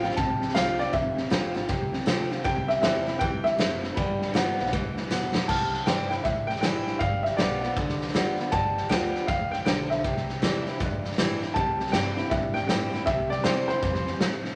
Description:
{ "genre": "rockabilly", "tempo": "158 BPM", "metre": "4/4", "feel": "swing 64% on 8ths", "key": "C major", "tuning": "A4 = 440 Hz", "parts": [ { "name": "clear upright piano", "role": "melody", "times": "0.0-14.2 s", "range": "B4 to A5", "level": "-31 LUFS", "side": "equal", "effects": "none" }, { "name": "picked steel-string acoustic guitar", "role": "accompaniment", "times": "0.0-14.6 s", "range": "F2 to F4", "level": "-33 LUFS", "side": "equal", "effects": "none" }, { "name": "electric guitar through a small old amp", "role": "riff", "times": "0.0-5.5, 11.6-14.6 s", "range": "F2 to A3", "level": "-37 LUFS", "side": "equal", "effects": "tremolo" }, { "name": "upright bass", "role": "bass", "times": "0.0-14.5 s", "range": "F1 to A2", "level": "-39 LUFS", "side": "equal", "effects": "none" }, { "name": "raw garage drum kit", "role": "drums", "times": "0.0-14.5 s", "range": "crash cymbal, hi-hat, kick drum, snare drum", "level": "-30 LUFS", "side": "equal", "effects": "none" } ], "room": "wet small room reverb, RT60 0.5 s", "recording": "none", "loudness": "-26 LUFS", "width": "mono", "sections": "0.0-5.5 A section; 5.5-14.6 B section", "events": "drum fill 5.1-5.5", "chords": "0.0 F; 2.5 C; 4.0 G7; 5.5 C; 7.0 G7; 10.0 C", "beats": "0.17 0.55 | 0.93 1.31 1.69 2.07 | 2.45 2.83 3.21 3.59 | 3.97 4.35 4.73 5.11 | 5.49 5.87 6.25 6.63 | 7.01 7.38 7.76 8.14 | 8.52 8.90 9.28 9.66 | 10.04 10.42 10.80 11.18 | 11.55 11.93 12.31 12.69 | 13.07 13.45 13.82 14.20" }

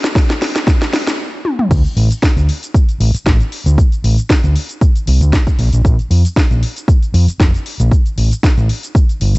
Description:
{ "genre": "nu-disco, nu disco", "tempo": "116 BPM", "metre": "4/4", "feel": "swing 54% on 16ths", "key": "D minor", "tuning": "A4 = 438 Hz", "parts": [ { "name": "house drum kit", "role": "drums", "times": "0.0-9.4 s", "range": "crash cymbal, hi-hat, shaker, snare drum, toms", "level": "-19 LUFS", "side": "equal", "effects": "overdrive" }, { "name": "electronic kick drum", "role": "drums", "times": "0.2-9.1 s", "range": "none", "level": "-12 LUFS", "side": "equal", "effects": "overdrive" }, { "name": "overdriven fingered electric bass", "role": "bass", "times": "1.7-9.4 s", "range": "F1 to F2", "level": "-12 LUFS", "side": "equal", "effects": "none" } ], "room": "little or no reverb", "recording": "nothing above 8.0 kHz", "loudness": "-11 LUFS", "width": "side -23 dB against mid", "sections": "0.0-1.7 A section; 1.7-9.4 B section", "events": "build-up 0.0-1.7; drum fill 0.0-1.2, 1.4; stop 1.2-1.7; drop 1.7-9.4", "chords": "none", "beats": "0.16 0.67 1.19 | 1.71 2.23 2.74 3.26 | 3.78 4.29 4.81 5.33 | 5.85 6.36 6.88 7.40 | 7.92 8.43 8.95" }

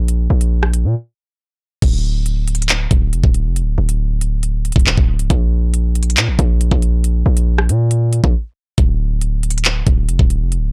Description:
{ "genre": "hip hop, drill", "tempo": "138 BPM", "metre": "4/4", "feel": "half-time", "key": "D harmonic minor", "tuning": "A4 = 440 Hz", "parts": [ { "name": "distorted 808-style bass", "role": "bass", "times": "0.0-10.7 s", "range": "C#1 to Bb2", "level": "-18 LUFS", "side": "equal", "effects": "distortion" }, { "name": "drill drum kit", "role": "drums", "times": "0.1-10.6 s", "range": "crash cymbal, handclaps, hi-hat, kick drum, rim click", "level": "-18 LUFS", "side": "equal", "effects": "none" } ], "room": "little or no reverb", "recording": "blown-out, overdriven recording, overdrive", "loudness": "-16 LUFS", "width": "mono", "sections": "0.0-1.8 A section; 1.8-10.7 B section", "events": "break 1.0-1.8, 8.3-8.8", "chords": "none", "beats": "| 0.08 0.52 0.95 1.39 | 1.82 2.26 2.69 3.13 | 3.56 4.00 4.43 4.87 | 5.30 5.74 6.17 6.61 | 7.04 7.47 7.91 8.35 | 8.78 9.21 9.65 10.08 | 10.52" }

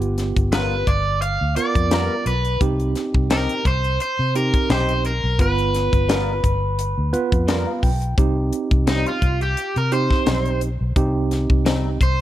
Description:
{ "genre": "straight-eighth soul blues", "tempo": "86 BPM", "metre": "4/4", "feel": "swing 54% on 16ths", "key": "C harmonic minor", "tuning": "A4 = 439 Hz", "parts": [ { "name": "bright tine electric piano", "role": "accompaniment", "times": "0.0-12.0 s", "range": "B3 to G5", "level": "-24 LUFS", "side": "right 4 dB", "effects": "medium stereo tremolo" }, { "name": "vintage muted fingered electric bass", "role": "bass", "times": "0.0-12.2 s", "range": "G1 to C3", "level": "-22 LUFS", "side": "equal", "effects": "none" }, { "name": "tight funk drum kit", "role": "drums", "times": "0.0-12.2 s", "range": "hi-hat, kick drum, snare drum", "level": "-21 LUFS", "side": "left 1 dB", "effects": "none" }, { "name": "crunchy overdriven guitar", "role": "melody", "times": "0.5-12.2 s", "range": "Eb4 to F5", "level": "-23 LUFS", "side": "right 1 dB", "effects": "none" }, { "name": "direct-recorded clean electric guitar", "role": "stabs", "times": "0.5-11.9 s", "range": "C3 to A#4", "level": "-27 LUFS", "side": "left 4 dB", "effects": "ensemble chorus" } ], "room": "studio reverb", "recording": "none", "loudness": "-18 LUFS", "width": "side -13 dB against mid", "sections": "0.0-8.2 A section; 8.2-12.2 B section", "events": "tine electric piano fill 7.1-8.2; overdriven electric guitar solo 8.2-12.2", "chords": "0.0 G7#9; 2.6 Cm; 5.4 G7#9; 8.2 Cm", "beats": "0.53 1.22 1.92 | 2.61 3.31 4.00 4.70 | 5.39 6.09 6.78 7.48 | 8.18 8.87 9.57 10.27 | 10.96 11.66" }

